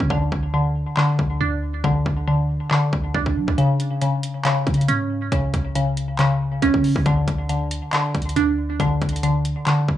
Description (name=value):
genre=hip hop, trap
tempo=138 BPM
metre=4/4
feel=half-time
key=unclear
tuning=A4 = 440 Hz
part: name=glassy wavetable pluck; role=arpeggios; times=0.0-10.0 s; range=C#3 to D4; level=-20 LUFS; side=equal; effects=chorus, low-pass filter, analog delay
part: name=clean 808-style bass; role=bass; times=0.0-10.0 s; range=C#2 to F#3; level=-26 LUFS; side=equal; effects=none
part: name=trap drum kit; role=drums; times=0.0-10.0 s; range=handclaps, hi-hat, kick drum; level=-25 LUFS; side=equal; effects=vintage 12-bit sampler grit
room=digital ambience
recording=dry, gritty hardware recording, small room ambience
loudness=-18 LUFS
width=side -12 dB against mid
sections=0.0-10.0 A section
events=break 0.0-3.6; kick muted 3.6-4.5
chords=0.1 N.C.; 3.6 C#5; 7.1 N.C.